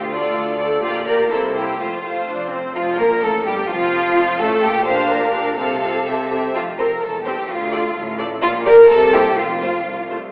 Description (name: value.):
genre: quick classical-period movement for string orchestra.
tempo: 127 BPM.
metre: 2/4.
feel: rubato.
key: F major.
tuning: A4 = 439 Hz.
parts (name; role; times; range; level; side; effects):
rich studio violin section; second line; 0.0-10.1 s; F4 to C5; -20 LUFS; equal; none.
rich studio double bass section; bass; 0.0-10.3 s; E1 to D2; -36 LUFS; equal; none.
warm studio cello section; bass; 0.0-10.3 s; C2 to C3; -30 LUFS; equal; none.
rich studio violin section; melody; 0.1-10.2 s; F4 to F5; -27 LUFS; equal; none.
rich studio viola section; accompaniment; 0.1-10.2 s; F3 to A4; -27 LUFS; equal; none.
room: wet recital hall reverb, RT60 1.7 s.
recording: heard from further back in the room, telephone sound.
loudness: -18 LUFS.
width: mono.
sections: 0.0-2.8 A section; 2.8-10.3 A section.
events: none.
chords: 0.0 Dm; 0.8 Gm7/Bb; 1.3 C7; 1.8 F; 2.8 Fsus4; 3.2 Gsus2; 3.7 F; 4.6 Gm7/Bb; 5.6 F/C; 6.1 C; 6.5 F; 7.0 C/E; 7.5 Dm; 8.4 Gm/Bb; 8.9 C7; 9.4 F.